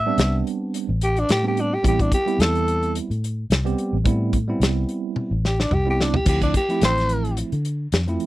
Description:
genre	straight-eighth soul blues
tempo	108 BPM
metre	4/4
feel	swing 55% on 16ths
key	A minor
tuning	A4 = 440 Hz
part	growling tenor saxophone	melody	0.0-7.4 s	D4 to E5	-22 LUFS	equal	none
part	vintage muted fingered electric bass	bass	0.0-8.2 s	A1 to D3	-23 LUFS	equal	none
part	bright tine electric piano	accompaniment	0.1-8.3 s	F3 to G4	-25 LUFS	right 4 dB	medium stereo tremolo
part	warm soul drum kit	drums	0.2-8.3 s	crash cymbal, hi-hat, kick drum, snare drum, toms	-22 LUFS	left 1 dB	none
room	little or no reverb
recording	dry, close 1970s-style studio recording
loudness	-19 LUFS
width	side -17 dB against mid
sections	0.0-8.3 A section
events	drum fill 5.2-6.3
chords	0.0 Am7; 6.3 Dm7

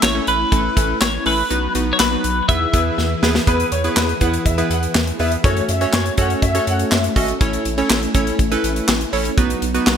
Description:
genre	synth-pop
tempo	122 BPM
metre	4/4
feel	straight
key	E major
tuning	A4 = 440 Hz
part	twelve-string electric guitar	melody	0.0-3.2 s	B4 to E5	-20 LUFS	left 2 dB	wide subtle chorus, ping-pong delay
part	warm analog keys	accompaniment	0.0-10.0 s	A3 to D#5	-22 LUFS	right 2 dB	chorus
part	string machine, violas	sustained chords	0.0-10.0 s	E3 to B4	-25 LUFS	left 1 dB	ensemble chorus
part	round analog bass	bass	0.0-10.0 s	G#1 to F#2	-23 LUFS	equal	none
part	modern studio drum kit	drums	0.0-10.0 s	handclaps, hi-hat, kick drum, snare drum	-19 LUFS	equal	none
part	warm concert grand piano	second line	3.5-7.2 s	B4 to F#5	-23 LUFS	left 2 dB	ensemble chorus, ping-pong delay
room	moderate plate reverb, RT60 1.6 s, studio ambience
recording	bright 1980s-style digital production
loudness	-15 LUFS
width	side -8 dB against mid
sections	0.0-3.5 A section; 3.5-10.0 B section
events	drum fill 3.0-3.5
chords	0.0 A; 1.5 B; 2.5 E; 5.4 F#m; 7.4 A; 9.4 B

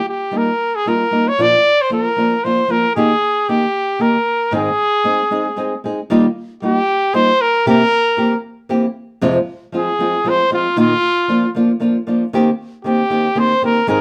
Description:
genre	mexican folk, mariachi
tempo	115 BPM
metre	3/4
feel	straight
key	Ab major, Eb major from 6.1 s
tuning	A4 = 440 Hz
part	clear trumpet	melody	0.0-14.0 s	F4 to D5	-18 LUFS	equal	none
part	nylon-string guitar	accompaniment	0.3-14.0 s	F2 to Ab4	-19 LUFS	equal	none
room	light reverb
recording	band playing live in one room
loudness	-16 LUFS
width	mono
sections	0.0-6.1 A section; 6.1-14.0 B section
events	none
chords	0.0 Ebadd9; 1.4 Bb; 3.0 Eb; 4.5 Ab; 6.1 Ebadd9; 7.7 C7; 9.2 Fm; 10.8 Bbsus4; 11.3 Bb; 12.3 Eb6

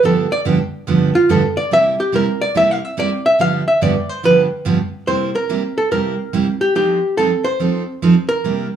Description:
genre	country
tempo	143 BPM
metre	4/4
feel	swing 65% on 8ths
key	C mixolydian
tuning	A4 = 440 Hz
part	archtop guitar, miked and amplified	melody	0.0-8.8 s	F4 to F5	-16 LUFS	equal	plate reverb
part	picked steel-string acoustic guitar	accompaniment	0.0-8.7 s	G2 to A4	-18 LUFS	right 4 dB	none
room	moderate club reverb, RT60 0.8 s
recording	studio ambience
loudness	-14 LUFS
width	side -9 dB against mid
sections	0.0-5.1 A section; 5.1-8.8 B section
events	hollow-body jazz guitar solo 0.0-5.1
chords	0.0 G7; 1.7 C7; 3.4 G7; 5.1 C7; 6.8 F9

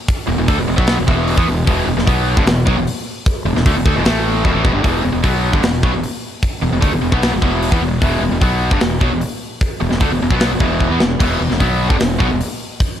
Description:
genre	hard rock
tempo	151 BPM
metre	4/4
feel	straight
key	unclear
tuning	A4 = 440 Hz
part	tight metal drum kit	drums	0.1-12.9 s	crash cymbal, hi-hat, kick drum, snare drum	-18 LUFS	equal	none
part	high-gain distorted guitar	riff	0.3-12.4 s	E2 to B3	-17 LUFS	equal	distortion
part	fuzz fingered electric bass	bass	0.3-12.4 s	E1 to E2	-19 LUFS	equal	overdrive
room	small room ambience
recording	none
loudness	-14 LUFS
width	side -10 dB against mid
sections	0.0-4.8 A section; 4.8-13.0 B section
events	drum fill 4.5-4.8, 10.8-11.2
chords	0.0 E5; 4.1 A5; 4.5 E5

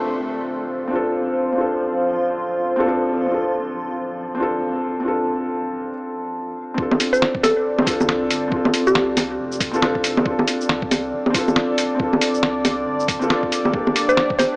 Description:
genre	future garage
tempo	138 BPM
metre	4/4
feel	swing 60% on 16ths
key	D minor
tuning	A4 = 440 Hz
part	felt-muted upright piano	accompaniment	0.0-14.6 s	Bb3 to A4	-22 LUFS	equal	sidechain pumping, analog delay
part	dark analog pad	sustained chords	0.0-14.6 s	D4 to C6	-25 LUFS	equal	chorus, sidechain pumping
part	warm sub bass	bass	0.0-14.4 s	D1 to C2	-43 LUFS	equal	sidechain pumping
part	backwards swelling texture	texture	0.0-5.9 s	F3 to F4	-32 LUFS	equal	built-in reverb
part	electronic kick drum	drums	6.8-14.4 s	none	-26 LUFS	equal	none
part	lo-fi sampler-style drum kit	drums	6.9-14.5 s	bongos, hi-hat, shaker, snare drum	-20 LUFS	equal	none
part	mallet-like synth pluck	melody	7.1-9.2, 14.1-14.6 s	G4 to C5	-20 LUFS	equal	chorus, analog delay
room	moderate huge ambient reverb, RT60 4.9 s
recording	small speaker sound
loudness	-18 LUFS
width	side -26 dB against mid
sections	0.0-6.8 A section; 6.8-14.6 B section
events	break 5.9-6.8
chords	0.0 Dm7; 13.7 Gmadd9/D

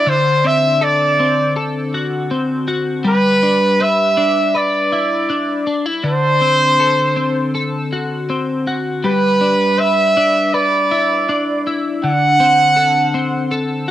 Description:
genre	indie pop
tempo	80 BPM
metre	4/4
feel	straight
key	D major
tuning	A4 = 439 Hz
part	bright trumpet	melody	0.0-13.5 s	B4 to F#5	-14 LUFS	right 2 dB	wide subtle chorus, cassette tape, analog delay
part	twelve-string electric guitar	accompaniment	0.0-13.9 s	D3 to B4	-18 LUFS	left 2 dB	analog chorus, warbly pitch drift, cassette tape
room	moderate spring reverb, RT60 2.3 s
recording	home recording on cassette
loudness	-13 LUFS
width	side -12 dB against mid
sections	0.0-13.9 A section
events	none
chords	0.1 D7; 3.1 G6; 6.1 D7; 9.0 G6; 12.0 D7

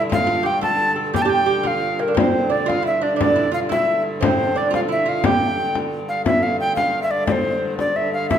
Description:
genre	medieval dance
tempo	117 BPM (dotted quarters)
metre	6/8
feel	straight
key	unclear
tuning	A4 = 440 Hz
part	tenor recorder	melody	0.0-8.4 s	Bb4 to A5	-20 LUFS	equal	none
part	lute	second line	0.0-6.1 s	Bb3 to A4	-23 LUFS	right 5 dB	none
part	warm hurdy-gurdy	drone	0.0-8.4 s	G2 to D3	-28 LUFS	equal	none
part	frame drum	percussion	0.1-8.4 s	none	-23 LUFS	left 3 dB	none
room	wet recital hall reverb, RT60 1.4 s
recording	minimal, uncompressed stereo recording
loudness	-17 LUFS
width	side -9 dB against mid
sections	0.0-6.3 A section; 6.3-8.4 B section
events	none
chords	none

